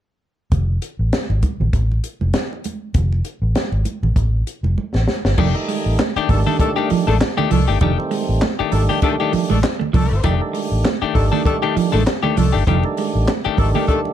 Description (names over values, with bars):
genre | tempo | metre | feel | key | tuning
funk | 99 BPM | 4/4 | swing 56% on 16ths | F mixolydian | A4 = 440 Hz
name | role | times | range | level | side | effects
vintage muted fingered electric bass | bass | 0.5-13.7 s | F1 to C2 | -18 LUFS | equal | none
compact cocktail drum kit | drums | 0.5-14.0 s | crash cymbal, handclaps, hi-hat, kick drum, snare drum | -22 LUFS | equal | none
congas | percussion | 0.5-14.1 s | none | -28 LUFS | right 5 dB | none
clean electric guitar | accompaniment | 5.4-13.9 s | Eb3 to A4 | -22 LUFS | left 11 dB | plate reverb
clean electric guitar | riff | 5.4-13.9 s | F3 to A3 | -23 LUFS | right 8 dB | none
percussive tonewheel organ | stabs | 5.4-14.1 s | Eb3 to F4 | -24 LUFS | right 4 dB | overdrive, stopped rotary speaker, plate reverb
warm horn section | second line | 6.3-14.0 s | Eb3 to A4 | -25 LUFS | left 5 dB | plate reverb
room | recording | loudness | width
light reverb | dark, warm production | -16 LUFS | side -11 dB against mid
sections
0.5-5.4 A section; 5.4-14.1 B section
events
drum fill 4.8-5.4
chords
0.5 F; 5.4 F13